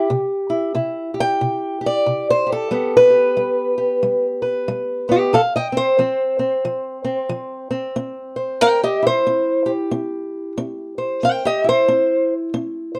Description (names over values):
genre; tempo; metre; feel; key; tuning
acoustic country blues, solo or duo; 92 BPM; 4/4; swing 60% on 8ths; C major; A4 = 441 Hz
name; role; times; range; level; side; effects
fingerpicked old ladder-braced acoustic guitar; solo; 0.0-13.0 s; C3 to G5; -19 LUFS; equal; none
room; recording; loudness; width
light reverb; dark, warm production; -19 LUFS; mono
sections
0.0-13.0 A section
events
steel-string acoustic guitar solo 0.0-13.0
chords
0.0 C; 2.7 G; 5.3 F5; 8.0 C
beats
| 0.09 0.75 1.40 2.06 | 2.71 3.37 4.03 4.68 | 5.34 5.99 6.65 7.30 | 7.96 8.61 9.27 9.92 | 10.57 11.23 11.88 12.54